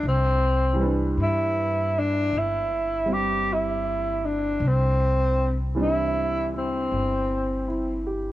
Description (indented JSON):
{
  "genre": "jazz ballad",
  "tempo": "52 BPM",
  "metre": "4/4",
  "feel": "swing 66% on 8ths",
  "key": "C major",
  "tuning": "A4 = 441 Hz",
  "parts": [
    { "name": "breathy tenor saxophone", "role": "melody", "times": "0.0-8.1 s", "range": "C4 to G4", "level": "-24 LUFS", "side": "equal", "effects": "none" },
    { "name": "warm concert grand piano", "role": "accompaniment", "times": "0.0-8.3 s", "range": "E3 to B4", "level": "-30 LUFS", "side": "right 2 dB", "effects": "none" },
    { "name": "upright bass", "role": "bass", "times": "0.0-8.3 s", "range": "G1 to G2", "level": "-26 LUFS", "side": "equal", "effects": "none" }
  ],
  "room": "light reverb",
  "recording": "worn, warbling old tape, cassette tape, warbly pitch drift",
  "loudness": "-22 LUFS",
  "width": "side -15 dB against mid",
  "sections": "0.0-8.3 A section",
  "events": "none",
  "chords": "0.0 Cmaj7"
}